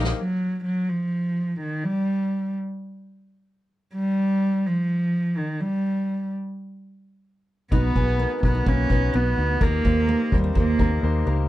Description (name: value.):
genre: piano-driven pop.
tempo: 127 BPM.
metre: 4/4.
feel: straight.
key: unclear.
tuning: A4 = 437 Hz.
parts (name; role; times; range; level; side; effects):
bright upright piano; accompaniment; 0.0-0.2, 7.7-11.5 s; Bb2 to C5; -28 LUFS; left 7 dB; none.
picked steel-string acoustic guitar; riff; 0.0, 7.7-11.4 s; Bb3 to D#4; -28 LUFS; right 8 dB; none.
vintage muted fingered electric bass; bass; 0.0-0.1, 7.7-11.5 s; Bb1 to Eb2; -23 LUFS; equal; none.
soft-mallet drum kit; drums; 0.0-0.2, 7.7-10.9 s; kick drum, snare drum; -24 LUFS; equal; none.
warm cello; melody; 0.2-11.2 s; Eb3 to Db4; -24 LUFS; right 1 dB; none.
room: light reverb.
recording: none.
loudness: -21 LUFS.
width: side -15 dB against mid.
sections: 0.2-11.5 A section.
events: drum fill 0.0.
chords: 0.2 N.C.; 7.7 B; 9.6 Eb.